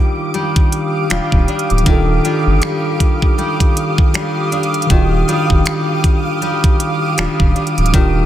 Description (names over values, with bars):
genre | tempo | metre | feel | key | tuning
contemporary R&B | 79 BPM | 4/4 | swing 58% on 16ths | unclear | A4 = 438 Hz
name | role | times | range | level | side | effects
mellow tine electric piano | accompaniment | 0.0-8.3 s | Eb3 to A4 | -20 LUFS | equal | medium stereo tremolo
granular cloud pad | sustained chords | 0.0-8.3 s | G4 to Eb6 | -21 LUFS | right 2 dB | built-in reverb, sidechain pumping
nylon-string guitar | arpeggios | 0.0-8.3 s | Eb3 to F4 | -22 LUFS | left 4 dB | tape echo
trap drum kit | drums | 0.3-8.1 s | finger snaps, hi-hat, kick drum | -14 LUFS | equal | soft clipping on snare
saturated sub bass | bass | 1.1-8.3 s | D1 to G1 | -16 LUFS | equal | none
room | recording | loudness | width
light reverb | dense, heavily limited modern master | -12 LUFS | side -12 dB against mid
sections
0.0-8.3 A section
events
none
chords
0.0 Ebmaj9